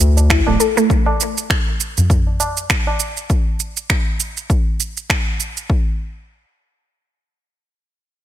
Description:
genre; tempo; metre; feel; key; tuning
organic downtempo; 100 BPM; 4/4; swing 56% on 16ths; unclear; A4 = 440 Hz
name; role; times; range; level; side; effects
round analog bass; bass; 0.0-0.6 s; D1 to D2; -13 LUFS; left 1 dB; none
electronic shaker and finger snaps; drums; 0.0-5.7 s; none; -20 LUFS; right 4 dB; overdrive
tabla; percussion; 0.2-3.0 s; none; -21 LUFS; right 1 dB; none
mallet-like synth pluck; arpeggios; 0.3-0.9 s; A3 to A4; -19 LUFS; equal; chorus, ping-pong delay
electronic kick drum; drums; 0.3-5.8 s; none; -18 LUFS; equal; overdrive
room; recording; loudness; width
little or no reverb; none; -15 LUFS; side -12 dB against mid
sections
0.0-5.7 A section; 5.7-8.1 B section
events
none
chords
0.0 D5; 0.9 N.C.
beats
0.30 | 0.90 1.50 2.10 2.70 | 3.30 3.90 4.50 5.10 | 5.70

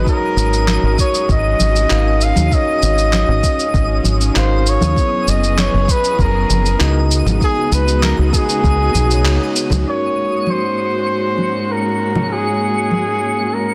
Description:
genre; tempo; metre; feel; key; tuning
sunset chillout; 98 BPM; 4/4; straight; unclear; A4 = 441 Hz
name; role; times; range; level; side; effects
trumpet with bucket mute; melody; 0.0-13.7 s; Ab4 to F5; -21 LUFS; equal; delay
tine electric piano; accompaniment; 0.0-13.7 s; Ab3 to F5; -26 LUFS; equal; vintage 12-bit sampler grit, tape echo
warm studio string section; sustained chords; 0.0-13.7 s; Ab2 to Ab4; -26 LUFS; equal; none
deep dub fingered electric bass; bass; 0.0-9.8 s; Gb1 to Eb2; -18 LUFS; equal; none
twinkling granular texture; texture; 0.0-13.7 s; Eb6 to Db7; -33 LUFS; equal; built-in reverb
electronic cabasa and handclaps; drums; 0.1-9.8 s; none; -25 LUFS; equal; soft clipping on snare
electronic kick drum; drums; 0.1-9.1 s; none; -20 LUFS; equal; none
congas; percussion; 0.7-13.0 s; none; -25 LUFS; equal; none
room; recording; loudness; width
light reverb; dense, heavily limited modern master; -16 LUFS; mono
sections
0.0-9.9 A section; 9.9-13.7 B section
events
band accent 9.2-9.6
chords
0.1 Ab9sus4; 5.0 Gb9sus4; 7.1 Db9sus4; 9.9 Ab9sus4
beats
| 0.07 0.68 1.29 1.90 | 2.52 3.13 3.74 4.35 | 4.96 5.58 6.19 6.80 | 7.41 8.03 8.64 9.25 | 9.86 10.47 11.09 11.70 | 12.31 12.92 13.54

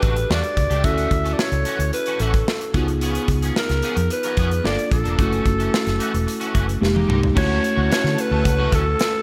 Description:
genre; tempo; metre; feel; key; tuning
polished 1980s jazz-funk pop; 110 BPM; 4/4; straight; D major; A4 = 440 Hz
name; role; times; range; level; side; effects
breathy alto saxophone; melody; 0.0-9.2 s; A4 to E5; -27 LUFS; equal; slapback echo
mellow tine electric piano; accompaniment; 0.0-9.2 s; Ab3 to A4; -27 LUFS; equal; analog chorus
electric guitar at the edge of break-up; riff; 0.0-9.2 s; E3 to Bb4; -32 LUFS; equal; ensemble chorus, slapback echo
vintage muted fingered electric bass; bass; 0.0-8.9 s; E1 to D3; -25 LUFS; equal; none
modern studio drum kit; drums; 0.0-9.1 s; crash cymbal, hi-hat, kick drum, snare drum, toms; -26 LUFS; equal; none
warm symphonic string section; sustained chords; 7.4-9.2 s; A4 to C#6; -36 LUFS; equal; none
room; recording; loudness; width
light reverb, small room ambience; none; -20 LUFS; mono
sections
0.0-7.4 A section; 7.4-9.2 B section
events
drum fill 6.8-7.4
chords
0.0 Em11; 0.8 Dmaj9; 2.7 C#7; 4.7 Gm7; 5.2 F#m7; 6.8 Fm11; 7.4 Dmaj7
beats
0.30 | 0.85 1.39 1.93 2.48 | 3.02 3.56 4.11 4.65 | 5.20 5.74 6.28 6.83 | 7.37 7.91 8.45 9.00

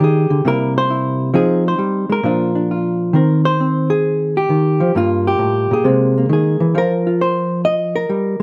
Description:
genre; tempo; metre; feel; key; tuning
solo jazz; 133 BPM; 4/4; swing 68% on 8ths; Eb major; A4 = 440 Hz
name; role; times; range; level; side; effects
hollow-body jazz guitar; solo; 0.0-8.4 s; G2 to Eb5; -16 LUFS; equal; none
room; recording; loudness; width
moderate studio reverb, RT60 0.8 s; none; -16 LUFS; mono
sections
0.0-3.1 A section; 3.1-8.4 B section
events
none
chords
0.4 C7; 1.3 Fm7; 2.2 Bb; 3.1 Eb6; 4.9 Gm9; 5.8 C7alt; 6.7 F7(no3)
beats
0.44 0.89 | 1.34 1.79 2.24 2.69 | 3.14 3.59 4.04 4.49 | 4.94 5.39 5.84 6.29 | 6.74 7.19 7.64 8.09

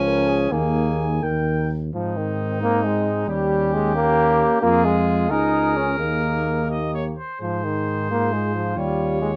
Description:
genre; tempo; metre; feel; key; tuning
classical, brass quintet; 83-90 BPM (dotted quarters); 6/8; rubato; Ab major; A4 = 440 Hz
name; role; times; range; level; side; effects
clear trumpet; melody; 0.0-9.4 s; Eb4 to Ab5; -31 LUFS; equal; none
clear French horn; accompaniment; 0.0-9.4 s; Bb3 to Ab4; -31 LUFS; equal; none
clear trombone; accompaniment; 0.0-9.3 s; Eb3 to Eb4; -25 LUFS; equal; none
mellow tuba; bass; 0.0-9.4 s; Db2 to Ab2; -27 LUFS; equal; none
mellow flugelhorn; second line; 0.1-9.4 s; Eb4 to Bb4; -30 LUFS; equal; none
room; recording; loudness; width
moderate studio ambience, RT60 0.5 s; none; -21 LUFS; mono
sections
0.0-1.9 A section; 1.9-9.4 B section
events
none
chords
0.0 Db; 0.5 Ebsus4; 1.2 Eb; 1.9 Ab; 3.3 Eb7; 4.6 Fm; 5.3 Bbm7/Db; 6.0 Ebsus4; 6.7 Eb; 7.4 Ab; 8.8 Eb7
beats
| 0.51 1.23 | 1.94 2.61 | 3.29 3.96 | 4.63 5.30 | 5.99 6.70 | 7.41 8.09 | 8.77

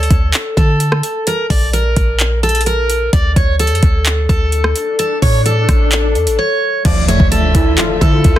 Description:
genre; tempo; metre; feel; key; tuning
hip hop, trap; 129 BPM; 4/4; half-time; D harmonic minor; A4 = 440 Hz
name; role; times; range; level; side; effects
picked steel-string acoustic guitar; melody; 0.0-8.4 s; A4 to D5; -17 LUFS; equal; low-pass filter, tape echo
clean 808-style bass; bass; 0.0-8.4 s; A1 to D3; -15 LUFS; equal; none
trap drum kit; drums; 0.0-8.4 s; crash cymbal, handclaps, hi-hat, kick drum, rim click; -14 LUFS; equal; overdrive
swell and impact; sound effects; 4.6-8.4 s; none; -23 LUFS; equal; none
warm symphonic string section; sustained chords; 6.8-8.4 s; D3 to E5; -23 LUFS; equal; none
warbly dusty pluck; accompaniment; 6.9-8.4 s; F3 to F4; -18 LUFS; right 1 dB; chorus, low-pass filter
room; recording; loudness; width
little or no reverb; dense, heavily limited modern master; -11 LUFS; side -12 dB against mid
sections
0.0-6.9 A section; 6.9-8.4 B section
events
swell 4.6-6.9; impact 6.9-8.4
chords
0.0 D5; 1.3 N.C.; 3.1 D5; 5.0 A; 6.9 Dmadd9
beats
0.34 0.80 | 1.27 1.73 2.20 2.67 | 3.13 3.60 4.06 4.53 | 4.99 5.46 5.92 6.39 | 6.85 7.32 7.78 8.25

